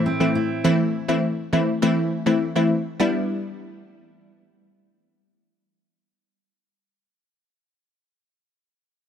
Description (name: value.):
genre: dancehall.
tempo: 102 BPM.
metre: 4/4.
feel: straight.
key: E minor.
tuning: A4 = 442 Hz.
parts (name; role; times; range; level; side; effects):
glassy wavetable pluck; accompaniment; 0.0-6.8 s; E3 to E4; -20 LUFS; left 1 dB; chorus.
fingerpicked steel-string acoustic guitar; arpeggios; 0.0-1.2 s; A2 to C5; -27 LUFS; right 2 dB; none.
room: light reverb, digital ambience.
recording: none.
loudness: -19 LUFS.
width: side -8 dB against mid.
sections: 0.0-3.0 A section; 3.0-5.4 B section.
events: none.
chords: 0.0 Am; 3.0 Em7.